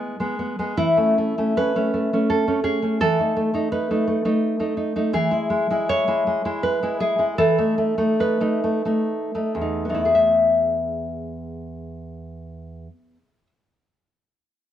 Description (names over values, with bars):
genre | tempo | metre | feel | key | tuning
romantic piece for solo classical guitar | 54-87 BPM | 3/4 | rubato | E major | A4 = 440 Hz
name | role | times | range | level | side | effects
nylon-string guitar | solo | 0.0-13.5 s | E2 to E5 | -20 LUFS | equal | none
room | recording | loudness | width
moderate studio reverb, RT60 0.7 s | band playing live in one room | -19 LUFS | side -10 dB against mid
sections
0.8-10.1 A section; 10.1-14.7 B section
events
slowing down 4.1-10.1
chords
0.0 E; 0.8 A/E; 3.0 B7/E; 5.1 E; 7.4 B7/E; 10.1 E